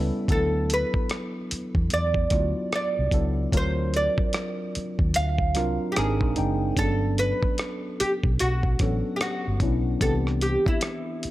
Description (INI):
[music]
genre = R&B, neo-soul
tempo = 74 BPM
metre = 4/4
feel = swing 62% on 16ths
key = D mixolydian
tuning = A4 = 440 Hz
[part]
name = oud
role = melody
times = 0.0-11.3 s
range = E4 to E#5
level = -28 LUFS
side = right 1 dB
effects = none
[part]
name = tine electric piano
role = accompaniment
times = 0.0-11.3 s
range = Eb3 to G5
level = -29 LUFS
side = equal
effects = phaser
[part]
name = vintage muted fingered electric bass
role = bass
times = 0.0-11.3 s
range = F#1 to E2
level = -26 LUFS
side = equal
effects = none
[part]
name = dusty soul sampler-style drum kit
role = drums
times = 0.3-11.3 s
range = hi-hat, kick drum, rim click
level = -26 LUFS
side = equal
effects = none
[sound]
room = digital ambience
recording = none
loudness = -22 LUFS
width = side -15 dB against mid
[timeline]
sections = 0.0-11.3 A section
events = none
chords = 0.3 D6; 3.5 D7alt; 6.0 G#maj9#11; 6.8 Gmaj9#11; 10.0 Cmaj7